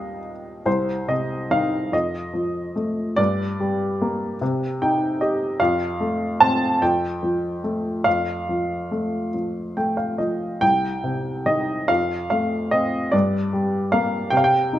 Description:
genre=classical, lyrical solo piano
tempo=48 BPM (dotted quarters)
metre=6/8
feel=uneven beats, rubato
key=C dorian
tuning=A4 = 440 Hz
part: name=warm upright piano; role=solo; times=0.0-14.8 s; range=C2 to A5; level=-20 LUFS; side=equal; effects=none
room=moderate recital hall reverb, RT60 1.4 s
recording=none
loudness=-20 LUFS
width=side -13 dB against mid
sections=0.7-14.8 A section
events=upright piano fill 4.4-5.6, 9.3-10.6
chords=0.0 Eb; 0.7 Cm; 1.9 F; 3.2 Gm; 4.4 Cm; 5.6 F; 10.6 Cm; 11.9 F; 13.1 Gm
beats=| 0.67 1.93 | 3.19 4.41 | 5.60 6.82 | 8.06 9.34 | 10.62 11.89 | 13.14 14.34

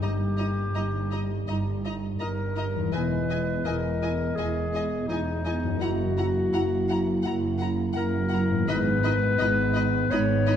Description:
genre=cinematic, emotional film score for orchestra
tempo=83 BPM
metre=4/4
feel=rubato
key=G# minor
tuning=A4 = 444 Hz
part: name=rich studio violin section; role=melody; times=0.0-10.6 s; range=G#5 to B5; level=-41 LUFS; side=left 3 dB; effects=none
part: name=clear studio violin section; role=second line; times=0.0-10.5 s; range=D#5 to F#5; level=-39 LUFS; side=left 4 dB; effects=none
part: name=warm clarinet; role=second line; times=0.0-10.6 s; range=D#4 to C#5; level=-30 LUFS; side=left 3 dB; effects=none
part: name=dark studio viola section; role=accompaniment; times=0.0-10.6 s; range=E3 to E4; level=-36 LUFS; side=right 3 dB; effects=none
part: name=mellow French horn section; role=sustained chords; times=0.0-10.6 s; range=D#3 to D#5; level=-32 LUFS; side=left 2 dB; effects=none
part: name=concert harp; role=arpeggios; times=0.0-10.6 s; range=E2 to A#4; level=-33 LUFS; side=left 5 dB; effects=none
part: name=rich studio double bass section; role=bass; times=0.0-10.6 s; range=E1 to G#1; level=-30 LUFS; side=right 3 dB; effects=none
part: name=warm studio cello section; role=bass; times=0.0-10.6 s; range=E2 to G#2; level=-31 LUFS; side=right 3 dB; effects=none
room=wet concert hall reverb, RT60 1.8 s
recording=dark, warm production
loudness=-24 LUFS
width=side -9 dB against mid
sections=0.0-10.6 A section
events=none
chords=0.0 D#/G; 2.9 Emaj7; 5.8 F#7; 8.7 G#m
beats=| 0.03 0.76 1.49 2.21 | 2.94 3.66 4.38 5.10 | 5.82 6.54 7.26 7.98 | 8.69 9.40 10.12

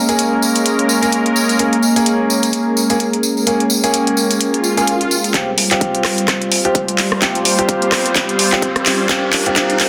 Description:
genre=bass house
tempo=128 BPM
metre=4/4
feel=swing 57% on 16ths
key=F minor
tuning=A4 = 440 Hz
part: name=sweeping resonant pad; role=sustained chords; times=0.0-9.9 s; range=G3 to C5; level=-22 LUFS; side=equal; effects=chorus, sidechain pumping
part: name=warbly tape-like pad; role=texture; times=0.0-9.9 s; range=Bb3 to G5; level=-23 LUFS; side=equal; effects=chorus, built-in reverb, phaser, sidechain pumping
part: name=clear grand piano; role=stabs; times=0.1-9.9 s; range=Bb3 to Ab4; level=-22 LUFS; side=equal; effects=sidechain pumping, delay
part: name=garage drum kit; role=drums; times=0.1-9.9 s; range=handclaps, hi-hat, rim click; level=-19 LUFS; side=equal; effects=none
part: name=tambourine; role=percussion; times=0.1-5.3 s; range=none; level=-23 LUFS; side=equal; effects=none
part: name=swell and riser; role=sound effects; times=4.6-9.9 s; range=none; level=-26 LUFS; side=equal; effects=none
part: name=electronic kick drum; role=drums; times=5.3-9.7 s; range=none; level=-25 LUFS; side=equal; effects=high-pass filter on kick
room=wet digital room reverb, RT60 1.3 s, digital ambience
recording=dense, heavily limited modern master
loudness=-15 LUFS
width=mono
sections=0.0-5.3 A section; 5.3-9.9 B section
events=swell 4.6-5.3; build-up 5.3-9.9; drum fill 5.3-9.9; riser 5.3-9.9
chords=0.0 Bbm7; 5.3 Fsus2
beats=0.19 0.66 1.12 | 1.59 2.06 2.53 3.00 | 3.47 3.94 4.41 4.88 | 5.34 5.81 6.28 6.75 | 7.22 7.69 8.16 8.62 | 9.09 9.56

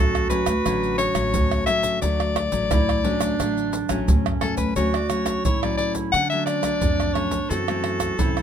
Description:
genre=samba and choro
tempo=88 BPM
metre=4/4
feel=straight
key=D major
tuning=A4 = 438 Hz
part: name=bright soprano saxophone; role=melody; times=0.0-8.4 s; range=A4 to F#5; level=-25 LUFS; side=left 4 dB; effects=none
part: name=mellow clarinet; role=second line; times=0.0-8.4 s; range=C#4 to F#4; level=-27 LUFS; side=right 9 dB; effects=none
part: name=nylon-string guitar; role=accompaniment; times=0.0-8.4 s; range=F#2 to C#4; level=-28 LUFS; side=left 6 dB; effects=none
part: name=upright bass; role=bass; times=0.0-8.4 s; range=A1 to D3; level=-27 LUFS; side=equal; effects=none
part: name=tube shaker, pandeiro, tamborim and surdo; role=percussion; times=0.1-8.4 s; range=none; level=-25 LUFS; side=right 2 dB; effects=none
room=light reverb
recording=close, detailed microphones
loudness=-20 LUFS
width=side -8 dB against mid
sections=0.0-4.8 A section; 4.8-8.4 B section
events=none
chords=0.0 Dmaj7; 7.5 F#m7b5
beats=0.66 1.34 | 2.03 2.71 3.40 4.08 | 4.77 5.45 6.13 6.82 | 7.51 8.19

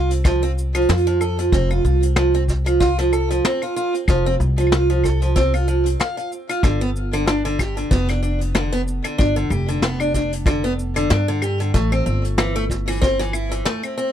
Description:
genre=folktronica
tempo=94 BPM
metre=4/4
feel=swing 56% on 16ths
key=F lydian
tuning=A4 = 445 Hz
part: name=picked steel-string acoustic guitar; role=arpeggios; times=0.0-14.1 s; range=D3 to F5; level=-21 LUFS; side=right 1 dB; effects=tape echo
part: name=upright bass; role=bass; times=0.0-13.6 s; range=F1 to G2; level=-21 LUFS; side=equal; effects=none
part: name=vintage brush drum kit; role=drums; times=0.1-14.1 s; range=cabasa, claves, hi-hat, snare drum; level=-24 LUFS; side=left 2 dB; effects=none
part: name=kick drum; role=drums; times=0.2-13.2 s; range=none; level=-18 LUFS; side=equal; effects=none
room=little or no reverb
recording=dry, close 1970s-style studio recording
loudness=-17 LUFS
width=side -10 dB against mid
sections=0.0-14.1 A section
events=none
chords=0.0 F5; 6.6 G5; 11.7 Am7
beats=0.25 0.89 | 1.53 2.17 2.80 3.44 | 4.08 4.72 5.36 6.00 | 6.63 7.27 7.91 8.55 | 9.19 9.82 10.46 11.10 | 11.74 12.38 13.02 13.65

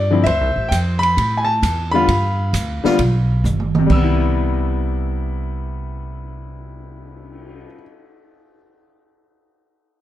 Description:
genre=jazz piano trio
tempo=132 BPM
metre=4/4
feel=swing 68% on 8ths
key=C major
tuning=A4 = 439 Hz
part: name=clear concert grand piano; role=melody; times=0.0-7.8 s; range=C3 to E6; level=-19 LUFS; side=left 2 dB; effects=none
part: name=upright bass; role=bass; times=0.0-7.6 s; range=G1 to A2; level=-20 LUFS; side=right 1 dB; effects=none
part: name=open jazz drum kit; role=drums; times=0.3-7.5 s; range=crash cymbal, cymbal swell, hi-hat, kick drum, ride cymbal, snare drum, toms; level=-24 LUFS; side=right 4 dB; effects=none
room=light reverb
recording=dark, warm production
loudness=-16 LUFS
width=side -13 dB against mid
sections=0.0-3.9 A section; 3.9-7.6 B section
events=drum fill 3.4-3.9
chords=0.3 Dm9 (rootless); 2.1 G7; 3.9 Cmaj7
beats=| 0.26 0.71 1.17 1.62 | 2.08 2.54 2.99 3.45 | 3.90 4.36 4.82 5.28 | 5.73 6.19 6.65 7.10

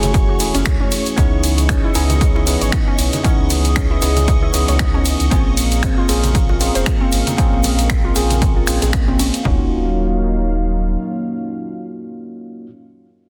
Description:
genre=deep house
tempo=116 BPM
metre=4/4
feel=swing 56% on 16ths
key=unclear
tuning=A4 = 440 Hz
part: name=dark analog pad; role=sustained chords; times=0.0-12.7 s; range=Fb3 to Eb6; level=-29 LUFS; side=equal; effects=chorus, sidechain pumping
part: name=bell-like tine electric piano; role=stabs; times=0.0-12.7 s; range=A3 to Ab4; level=-25 LUFS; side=equal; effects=phaser, sidechain pumping, tape echo
part: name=warm sub bass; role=bass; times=0.0-11.0 s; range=Eb1 to Db2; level=-21 LUFS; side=equal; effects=sidechain pumping
part: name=punchy analog drum machine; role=drums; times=0.0-9.4 s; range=finger snaps, hi-hat, ride cymbal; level=-26 LUFS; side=equal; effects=soft clipping on snare
part: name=congas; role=percussion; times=0.0-9.2 s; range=none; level=-31 LUFS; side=equal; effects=none
part: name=tube shaker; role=percussion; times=0.0-9.4 s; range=none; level=-32 LUFS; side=equal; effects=none
part: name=soft string machine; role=texture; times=0.0-9.5 s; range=Db5 to Db6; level=-34 LUFS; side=equal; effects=phaser, ensemble chorus
part: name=punchy analog drum machine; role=drums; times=0.1-9.6 s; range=kick drum, toms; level=-20 LUFS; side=equal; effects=none
part: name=warbly dusty pluck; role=arpeggios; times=0.3-9.7 s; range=C4 to Db5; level=-29 LUFS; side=equal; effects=chorus, phaser, cassette tape, sidechain pumping, tape echo
room=light reverb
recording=dense, heavily limited modern master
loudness=-16 LUFS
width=mono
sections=0.0-9.5 A section; 9.5-13.3 B section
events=drop 0.0-9.5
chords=0.0 Gbm9; 1.2 Dbm9; 5.3 Bbm9; 9.5 Ebm9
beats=0.14 0.66 | 1.18 1.69 2.21 2.73 | 3.25 3.76 4.28 4.80 | 5.31 5.83 6.35 6.87 | 7.38 7.90 8.42 8.94 | 9.45 9.97 10.49 11.00 | 11.52 12.04 12.55

